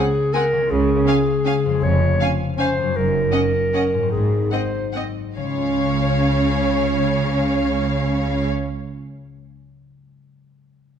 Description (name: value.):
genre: classical, orchestral ballroom waltz.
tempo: 135-172 BPM.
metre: 3/4.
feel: rubato.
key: Db major.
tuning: A4 = 440 Hz.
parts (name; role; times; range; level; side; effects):
warm symphonic violin section; melody; 0.0-8.5 s; F5 to Ab5; -31 LUFS; left 3 dB; none.
clear clarinet; second line; 0.0-8.5 s; Ab4 to Db5; -23 LUFS; equal; none.
warm symphonic violin section; second line; 0.0-8.5 s; Db5 to Gb5; -28 LUFS; left 1 dB; none.
warm symphonic viola section; accompaniment; 0.0-8.5 s; C4 to Db4; -25 LUFS; right 2 dB; none.
concert harp; arpeggios; 0.0-9.3 s; F2 to Db5; -25 LUFS; left 9 dB; none.
clear symphonic double bass section; bass; 0.7-8.5 s; F1 to Db2; -25 LUFS; right 5 dB; none.
rich symphonic cello section; bass; 0.7-8.5 s; F2 to Db3; -26 LUFS; right 3 dB; none.
room: wet recital hall reverb, RT60 1.6 s.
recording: dark, warm production.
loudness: -17 LUFS.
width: side -8 dB against mid.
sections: 0.0-5.4 A section; 5.4-7.7 B section.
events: slowing down 2.4-5.4.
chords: 0.0 Ab7/Db; 0.7 Db; 1.8 Db/F; 3.0 Ebm7/Gb; 4.1 Ab7; 5.4 Db.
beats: 0.33 | 0.70 1.06 1.44 | 1.83 2.20 2.58 | 2.95 3.33 3.73 | 4.12 4.52 4.95 | 5.37 5.76 6.17 | 6.55 6.93 7.34.